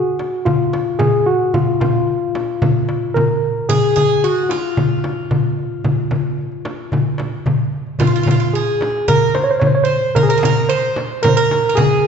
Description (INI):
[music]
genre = Turkish makam ensemble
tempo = 111 BPM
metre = 4/4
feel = straight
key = F makam kurdi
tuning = A4 = 438 Hz
[part]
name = tine electric piano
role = melody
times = 0.0-12.1 s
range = F4 to Db5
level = -18 LUFS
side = left 1 dB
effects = medium stereo tremolo
[part]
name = darbuka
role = percussion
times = 0.2-11.9 s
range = none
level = -20 LUFS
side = left 4 dB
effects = none
[part]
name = frame drum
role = percussion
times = 0.2-11.9 s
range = none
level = -21 LUFS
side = right 4 dB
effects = none
[part]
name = Greek bouzouki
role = second line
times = 3.7-12.1 s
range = F4 to C5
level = -23 LUFS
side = right 5 dB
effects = none
[sound]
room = wet scoring stage reverb, RT60 1.7 s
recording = recorded in a church or concert hall, nothing above 7.9 kHz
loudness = -14 LUFS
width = side -6 dB against mid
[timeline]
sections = 0.0-8.0 A section; 8.0-12.1 B section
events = none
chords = none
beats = 0.47 1.00 | 1.54 2.08 2.62 3.15 | 3.69 4.23 4.77 5.31 | 5.85 6.39 6.92 7.46 | 8.00 8.54 9.08 9.62 | 10.16 10.70 11.24 11.78